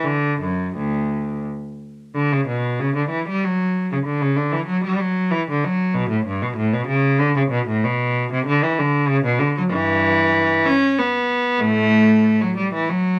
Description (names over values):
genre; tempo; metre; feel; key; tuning
classical, baroque-style suite movement for unaccompanied cello; 95 BPM; 3/4; rubato; B minor; A4 = 437 Hz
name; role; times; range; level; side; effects
clear cello; solo; 0.0-13.2 s; D2 to C#4; -20 LUFS; equal; none
room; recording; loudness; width
moderate studio reverb, RT60 0.7 s; none; -20 LUFS; mono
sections
0.0-2.1 A section; 2.1-13.2 A section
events
none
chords
none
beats
| 0.05 0.76 1.46 | 2.15 2.79 3.43 | 4.06 4.69 5.33 | 5.95 6.58 7.19 | 7.82 8.45 9.07 | 9.70 10.34 10.97 | 11.59 12.23 12.88